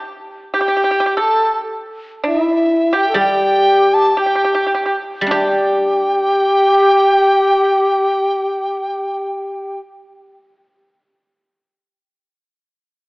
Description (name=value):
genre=chinese traditional, Chinese chamber ensemble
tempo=48-72 BPM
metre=2/4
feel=straight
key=unclear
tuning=A4 = 441 Hz
part: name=breathy mellow xiao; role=second line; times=0.5-9.8 s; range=E4 to A4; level=-17 LUFS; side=left 1 dB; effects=none
part: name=pipa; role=second line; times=0.5-9.8 s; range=E4 to A4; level=-21 LUFS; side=right 1 dB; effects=none
part: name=mellow large dizi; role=melody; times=0.6-9.8 s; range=E5 to A5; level=-17 LUFS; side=equal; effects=none
part: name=guzheng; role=accompaniment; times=3.1-11.3 s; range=G3 to G4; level=-20 LUFS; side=equal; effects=none
room=moderate concert hall reverb, RT60 1.9 s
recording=AM radio sound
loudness=-13 LUFS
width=side -25 dB against mid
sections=0.0-5.3 A section; 5.3-10.2 B section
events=slowing down 1.4-5.3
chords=none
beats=0.55 | 1.39 2.24 | 3.15 4.16 | 5.32 6.54 | 7.75 8.96